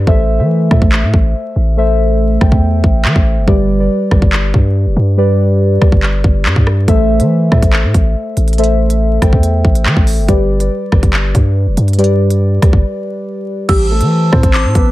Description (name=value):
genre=hip hop, drill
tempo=141 BPM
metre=4/4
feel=half-time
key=A minor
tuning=A4 = 440 Hz
part: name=muted felt-like synth keys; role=accompaniment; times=0.0-13.7 s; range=G3 to G5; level=-16 LUFS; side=equal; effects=chorus
part: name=long sustained 808-style bass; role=bass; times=0.0-14.9 s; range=F1 to E3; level=-12 LUFS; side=equal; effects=none
part: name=drill drum kit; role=drums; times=0.1-14.9 s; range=crash cymbal, handclaps, hi-hat, kick drum, rim click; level=-12 LUFS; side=equal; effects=none
part: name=dark concert grand piano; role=melody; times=13.7-14.9 s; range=G3 to C5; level=-17 LUFS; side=equal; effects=ping-pong delay
part: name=delicate synth tine bell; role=second line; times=13.7-14.9 s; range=D6 to E6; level=-22 LUFS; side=equal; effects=chorus, phaser, tremolo, ping-pong delay
part: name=glass harmonica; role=sustained chords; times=13.7-14.9 s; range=C5 to E6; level=-23 LUFS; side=right 1 dB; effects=none
room=little or no reverb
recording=vinyl crackle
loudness=-10 LUFS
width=side -16 dB against mid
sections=0.0-13.7 A section; 13.7-14.9 B section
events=break 0.1-6.9, 12.8-13.7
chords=0.1 Am; 3.5 G; 6.9 Am; 10.3 G; 13.7 Am